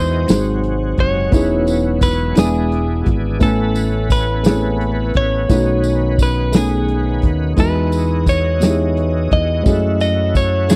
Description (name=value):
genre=slow gospel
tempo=58 BPM (dotted quarters)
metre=6/8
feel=straight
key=E major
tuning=A4 = 437 Hz
part: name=clean electric guitar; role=melody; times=0.0-10.8 s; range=G#4 to D#5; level=-23 LUFS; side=equal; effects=spring reverb
part: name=dark upright piano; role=accompaniment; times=0.0-10.8 s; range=G#2 to G#5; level=-22 LUFS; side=equal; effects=none
part: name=bright tonewheel organ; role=sustained chords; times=0.0-10.8 s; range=B#2 to D#5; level=-28 LUFS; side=equal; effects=slow rotary speaker, overdrive, chorus vibrato
part: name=fingered electric bass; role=bass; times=0.0-10.8 s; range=E1 to F#2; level=-22 LUFS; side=equal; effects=none
part: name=warm soul drum kit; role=drums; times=0.3-10.8 s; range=hi-hat, kick drum, snare drum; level=-18 LUFS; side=equal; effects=none
part: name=tambourine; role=percussion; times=0.3-10.8 s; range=none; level=-36 LUFS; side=equal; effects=none
room=little or no reverb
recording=dry, close 1970s-style studio recording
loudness=-16 LUFS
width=mono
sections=0.0-10.8 A section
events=none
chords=0.3 G#7; 1.3 C#m9/E; 2.4 E7; 3.4 Amaj9; 5.5 B9; 7.6 Emaj9; 9.7 F#m9